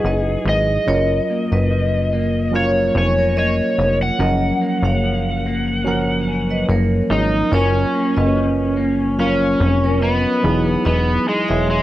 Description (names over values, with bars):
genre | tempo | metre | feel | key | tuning
indie pop | 72 BPM | 4/4 | swing 55% on 16ths | F# major | A4 = 440 Hz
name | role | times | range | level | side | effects
overdriven slide guitar | melody | 0.0-11.8 s | G#3 to F#5 | -20 LUFS | equal | wide subtle chorus
vibraphone with hard mallets | second line | 0.0-11.8 s | A#4 to F#5 | -26 LUFS | equal | lush chorus, tape echo
electric guitar through a small old amp | accompaniment | 0.0-11.8 s | F#2 to F#4 | -24 LUFS | left 3 dB | wide subtle chorus, vibrato effect
tine electric piano | accompaniment | 0.0-11.8 s | E#3 to A#4 | -24 LUFS | right 3 dB | medium stereo tremolo
plucky analog bass | bass | 0.0-11.8 s | E1 to G#1 | -20 LUFS | equal | none
room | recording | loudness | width
moderate small room reverb, RT60 0.5 s | worn, warbling old tape, cassette tape, warbly pitch drift | -15 LUFS | side -14 dB against mid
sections
0.0-7.5 A section; 7.5-11.8 A section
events
none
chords
0.0 Emaj9; 0.9 F#maj7; 10.4 Emaj9